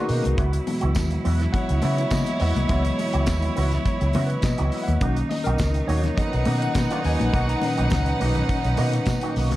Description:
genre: disco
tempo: 104 BPM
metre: 4/4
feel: straight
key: B major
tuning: A4 = 441 Hz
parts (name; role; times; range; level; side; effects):
- clear studio violin section; second line; 0.0-9.6 s; D#4 to F#5; -29 LUFS; right 1 dB; none
- bright tine electric piano; accompaniment; 0.0-9.6 s; A#2 to A#5; -28 LUFS; left 2 dB; medium stereo tremolo
- electric guitar with an envelope filter; accompaniment; 0.0-9.6 s; A#3 to F#4; -32 LUFS; right 2 dB; analog chorus
- bright studio string section; sustained chords; 0.0-9.6 s; B2 to E4; -31 LUFS; right 3 dB; none
- vintage muted fingered electric bass; bass; 0.1-9.6 s; A#1 to C#3; -23 LUFS; equal; none
- damped 70s drum kit; drums; 0.1-9.6 s; handclaps, hi-hat, kick drum, snare drum; -28 LUFS; equal; none
- congas; percussion; 0.2-9.6 s; none; -33 LUFS; left 5 dB; none
- tambourine; percussion; 0.9-9.2 s; none; -42 LUFS; right 3 dB; none
room: small room ambience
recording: dark, warm production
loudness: -20 LUFS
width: side -15 dB against mid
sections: 0.0-9.6 A section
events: tine electric piano solo 0.0-9.6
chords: 0.4 F#7sus4; 5.0 Bmaj7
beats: | 0.38 0.96 1.54 2.12 | 2.70 3.28 3.86 4.44 | 5.02 5.60 6.18 6.76 | 7.34 7.92 8.49 9.07

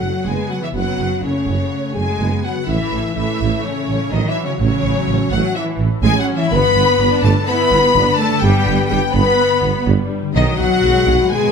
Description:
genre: cinematic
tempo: 125 BPM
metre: 4/4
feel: straight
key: unclear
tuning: A4 = 441 Hz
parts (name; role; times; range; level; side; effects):
- warm symphonic violin section; melody; 0.0-11.5 s; C#5 to B5; -24 LUFS; left 4 dB; none
- clear symphonic violin section; second line; 0.0-11.5 s; C#5 to B5; -23 LUFS; left 3 dB; none
- dark symphonic viola section; accompaniment; 0.0-11.5 s; E3 to E4; -26 LUFS; right 2 dB; none
- dark French horn section; sustained chords; 0.0-11.5 s; C#4 to B4; -20 LUFS; left 4 dB; none
- concert harp; arpeggios; 0.0-11.5 s; F#2 to C#6; -25 LUFS; left 11 dB; none
- clear studio double bass section; bass; 0.0-11.2 s; F#1 to B1; -21 LUFS; right 4 dB; none
- mellow tuba; bass; 0.0-11.2 s; F#1 to B1; -24 LUFS; right 5 dB; none
- rich symphonic cello section; bass; 0.0-11.5 s; C#3 to B3; -23 LUFS; right 4 dB; none
- timpani; percussion; 10.4-11.5 s; B2; -28 LUFS; left 1 dB; none
room: moderate scoring stage reverb, RT60 1.5 s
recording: none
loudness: -14 LUFS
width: side -6 dB against mid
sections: 0.0-11.5 A section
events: timpani fill 10.3-11.5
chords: 0.0 F#m; 2.7 A; 6.5 G; 10.3 B6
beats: 0.27 | 0.75 1.23 1.71 2.20 | 2.68 3.16 3.64 4.12 | 4.60 5.08 5.55 6.03 | 6.52 7.00 7.47 7.95 | 8.43 8.91 9.39 9.87 | 10.35 10.83 11.32

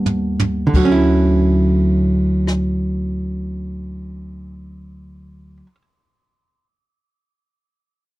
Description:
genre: jazz ballad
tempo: 58 BPM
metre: 4/4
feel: swing 68% on 8ths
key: D major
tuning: A4 = 439 Hz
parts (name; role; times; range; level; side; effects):
- archtop guitar, miked and amplified; accompaniment; 0.0-5.8 s; D3 to E4; -18 LUFS; right 1 dB; none
- upright bass; bass; 0.0-5.6 s; D2 to Eb2; -22 LUFS; left 1 dB; none
- jazz brush drum kit; drums; 0.1-2.6 s; kick drum, ride cymbal, rim click, toms; -21 LUFS; equal; none
room: little or no reverb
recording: dry, close 1970s-style studio recording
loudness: -14 LUFS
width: side -17 dB against mid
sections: 0.7-4.9 A section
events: drum fill 0.0-0.7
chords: 0.0 A9sus4 (rootless); 0.7 Dmaj9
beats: | 0.73 1.77 2.80 3.83

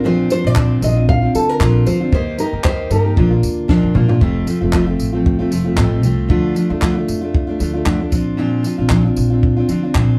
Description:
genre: acoustic pop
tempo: 115 BPM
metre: 4/4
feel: swing 55% on 16ths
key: Bb major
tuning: A4 = 441 Hz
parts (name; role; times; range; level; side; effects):
- nylon-string guitar; melody; 0.0-3.7 s; A4 to F5; -23 LUFS; equal; none
- picked steel-string acoustic guitar; accompaniment; 0.0-10.2 s; F2 to G4; -19 LUFS; equal; none
- upright bass; bass; 0.0-10.2 s; F1 to Bb2; -21 LUFS; equal; none
- compact cocktail drum kit; drums; 0.3-10.1 s; handclaps, kick drum, snare drum, tambourine, toms; -21 LUFS; equal; none
room: moderate studio reverb, RT60 0.5 s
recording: heard from further back in the room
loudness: -16 LUFS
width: mono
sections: 0.0-4.2 A section; 4.2-10.2 B section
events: drum fill 3.7-4.2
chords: 0.0 Bbadd9; 2.1 Eb; 3.2 Bb; 4.2 F; 6.3 Dm; 8.1 Bbadd9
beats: | 0.05 0.57 1.09 1.61 | 2.13 2.65 3.17 3.69 | 4.21 4.73 5.25 5.78 | 6.30 6.82 7.34 7.86 | 8.38 8.91 9.43 9.95

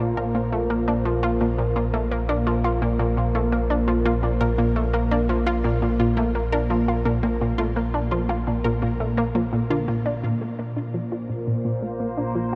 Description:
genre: ambient, sequencer-driven space music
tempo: 85 BPM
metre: 4/4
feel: straight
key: unclear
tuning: A4 = 440 Hz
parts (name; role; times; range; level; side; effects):
- sweeping resonant pad; sustained chords; 0.0-12.6 s; Bb2 to C5; -28 LUFS; equal; chorus, shimmer reverb
- analog pluck; riff; 0.0-12.6 s; Bb2 to F4; -28 LUFS; equal; chorus, tape echo, shimmer reverb
- warm sub bass; bass; 0.0-12.6 s; Bb1; -30 LUFS; equal; none
- unison pluck; arpeggios; 0.2-10.0 s; Bb3 to Bb4; -32 LUFS; equal; tape echo, shimmer reverb
room: moderate huge ambient reverb, RT60 7.6 s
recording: none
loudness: -23 LUFS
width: mono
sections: 0.0-10.2 A section; 10.2-12.6 B section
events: none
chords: 0.0 Bbsus2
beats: 0.35 1.06 | 1.76 2.47 3.17 3.88 | 4.58 5.29 6.00 6.70 | 7.41 8.12 8.82 9.53 | 10.23 10.94 11.64 12.35

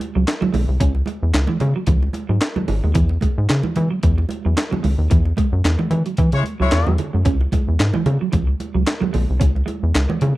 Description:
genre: funk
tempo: 112 BPM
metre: 4/4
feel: swing 56% on 16ths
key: C# minor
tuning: A4 = 440 Hz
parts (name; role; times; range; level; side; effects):
- breakbeat sampler-style drum kit; drums; 0.0-10.4 s; handclaps, hi-hat, kick drum, snare drum; -20 LUFS; equal; none
- congas; percussion; 0.0-10.4 s; none; -28 LUFS; right 4 dB; none
- clean electric guitar; riff; 0.2-10.2 s; E3 to C#4; -23 LUFS; right 4 dB; lush chorus
- rubbery square bass; bass; 0.2-10.3 s; G#1 to E3; -18 LUFS; equal; none
- clear horn section; second line; 6.3-6.9 s; G#3 to C#5; -23 LUFS; left 4 dB; none
room: little or no reverb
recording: dry, close 1970s-style studio recording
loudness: -16 LUFS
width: side -17 dB against mid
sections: 0.0-10.4 A section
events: band accent 5.1-7.3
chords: 0.0 C#m; 3.0 E; 7.3 C#m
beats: 0.27 | 0.81 1.35 1.89 2.42 | 2.96 3.50 4.03 4.57 | 5.11 5.65 6.18 6.72 | 7.26 7.80 8.33 8.87 | 9.41 9.95

